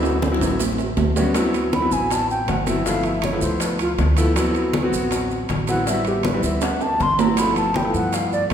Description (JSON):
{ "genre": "Afro-Cuban jazz", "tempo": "159 BPM", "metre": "4/4", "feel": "straight", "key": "D mixolydian", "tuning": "A4 = 440 Hz", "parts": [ { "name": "clear concert grand piano", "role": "accompaniment", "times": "0.0-8.4 s", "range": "F3 to F#4", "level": "-22 LUFS", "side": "left 1 dB", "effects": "none" }, { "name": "upright bass", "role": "bass", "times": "0.0-8.5 s", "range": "G1 to G2", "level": "-26 LUFS", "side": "equal", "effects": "none" }, { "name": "congas", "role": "percussion", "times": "0.0-8.5 s", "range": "none", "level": "-28 LUFS", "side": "equal", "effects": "none" }, { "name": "timbales", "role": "percussion", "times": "0.0-8.5 s", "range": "none", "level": "-27 LUFS", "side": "right 6 dB", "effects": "none" }, { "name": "bongos", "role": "percussion", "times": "0.1-8.5 s", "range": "none", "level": "-30 LUFS", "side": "left 6 dB", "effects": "none" }, { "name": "maracas", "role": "percussion", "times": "0.1-8.5 s", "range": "none", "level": "-34 LUFS", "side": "right 6 dB", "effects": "none" }, { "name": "breathy mellow concert flute", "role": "melody", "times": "1.7-8.4 s", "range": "F4 to C6", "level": "-23 LUFS", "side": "equal", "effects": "none" } ], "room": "wet recital hall reverb, RT60 1.8 s", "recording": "recorded in a church or concert hall", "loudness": "-18 LUFS", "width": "side -8 dB against mid", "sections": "0.0-1.4 A section; 1.4-8.5 B section", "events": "drum fill 0.0-1.4, 6.6-7.4; flute solo 1.4-8.5", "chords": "0.0 D13; 0.6 A13; 1.4 D13; 2.9 G13; 4.4 D13; 5.9 Am7; 6.6 D13; 7.4 G13" }